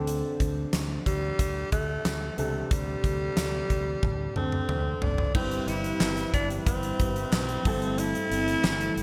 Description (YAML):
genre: 1980s-style pop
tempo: 91 BPM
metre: 4/4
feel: straight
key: unclear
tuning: A4 = 435 Hz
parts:
  - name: warm concert grand piano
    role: accompaniment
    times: 0.0-9.0 s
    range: G2 to B4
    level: -37 LUFS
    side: equal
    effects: subtle chorus, shimmer reverb
  - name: mellow fretless electric bass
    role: bass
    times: 0.0-9.0 s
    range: F#1 to D2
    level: -36 LUFS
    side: equal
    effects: none
  - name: huge arena drum kit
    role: drums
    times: 0.1-9.0 s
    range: crash cymbal, hi-hat, kick drum, snare drum, toms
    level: -32 LUFS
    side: equal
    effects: gated reverb
  - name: raspy tenor saxophone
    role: melody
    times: 1.1-9.0 s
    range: G3 to E4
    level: -33 LUFS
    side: equal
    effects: shimmer reverb, digital delay
  - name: brassy analog pad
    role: sustained chords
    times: 5.3-9.0 s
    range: E3 to B4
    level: -39 LUFS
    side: equal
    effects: chorus, shimmer reverb
  - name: analog synth brass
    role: stabs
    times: 5.3-9.0 s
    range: C4 to B4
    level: -39 LUFS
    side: equal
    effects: chorus, shimmer reverb
  - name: group handclap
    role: percussion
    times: 6.0-8.8 s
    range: none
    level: -45 LUFS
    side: equal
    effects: none
room: moderate plate reverb, RT60 1.5 s, small room ambience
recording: bright 1980s-style digital production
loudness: -28 LUFS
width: mono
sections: 0.0-5.3 A section; 5.3-9.0 B section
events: drum fill 4.0-5.3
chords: 0.0 D7sus4; 5.3 Cmaj7/G; 7.7 Am7/G